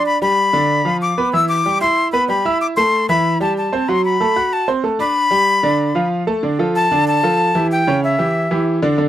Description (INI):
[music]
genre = latin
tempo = 188 BPM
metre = 4/4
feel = straight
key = unclear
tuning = A4 = 442 Hz
[part]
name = breathy bright jazz flute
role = melody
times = 0.0-8.6 s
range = E5 to E6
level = -16 LUFS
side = left 3 dB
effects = none
[part]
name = bright grand piano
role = accompaniment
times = 0.0-9.1 s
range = C#3 to F#6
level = -17 LUFS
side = right 2 dB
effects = none
[sound]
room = light reverb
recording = dry, close 1970s-style studio recording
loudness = -14 LUFS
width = side -12 dB against mid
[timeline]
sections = 0.0-6.4 A section; 6.4-9.1 B section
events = none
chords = 0.1 G7; 1.3 Cmaj7; 2.6 Am7; 3.9 D7; 5.2 G7; 6.4 Dm; 7.7 C#dim